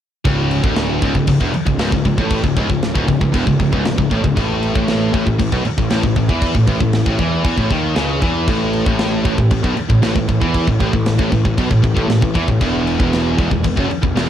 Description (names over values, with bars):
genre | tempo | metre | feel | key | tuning
heavy metal | 116 BPM | 4/4 | straight | C# minor | A4 = 440 Hz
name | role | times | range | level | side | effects
scooped high-gain guitar | riff | 0.2-14.3 s | C#2 to E3 | -20 LUFS | left 5 dB | distortion
tight metal drum kit | drums | 0.2-14.3 s | crash cymbal, kick drum, snare drum | -20 LUFS | equal | none
heavy high-gain guitar | riff | 0.3-14.3 s | C#2 to E3 | -22 LUFS | right 1 dB | distortion
tight distorted guitar | riff | 0.3-14.3 s | C#2 to E3 | -22 LUFS | right 8 dB | distortion
fuzz picked electric bass | bass | 0.3-14.3 s | C#1 to E2 | -21 LUFS | equal | overdrive
room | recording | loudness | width
studio reverb | dark, warm production | -14 LUFS | side -10 dB against mid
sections
0.2-14.3 A section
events
none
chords
0.2 C#m; 4.4 A5; 12.6 E5